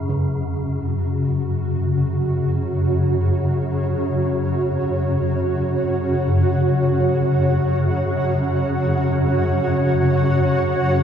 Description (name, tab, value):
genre	dark ambient drone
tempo	free time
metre	none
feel	none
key	unclear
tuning	A4 = 438 Hz
part	gamelan-type bossed gongs	arpeggios	0.0-7.6 s	E2 to C#3	-32 LUFS	right 1 dB	none
part	swarming drone	drone	0.0-11.0 s	F#2 to C#3	-19 LUFS	left 1 dB	built-in reverb
part	bronze singing bowl	texture	0.0-11.0 s	none	barely audible	none	none
part	granular cloud pad	sustained chords	0.9-11.0 s	F#4 to F#5	-22 LUFS	right 2 dB	built-in reverb
room	wet huge ambient reverb, RT60 8.9 s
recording	none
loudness	-18 LUFS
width	side -8 dB against mid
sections	0.1-11.0 A section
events	none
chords	0.1 F#5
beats	free time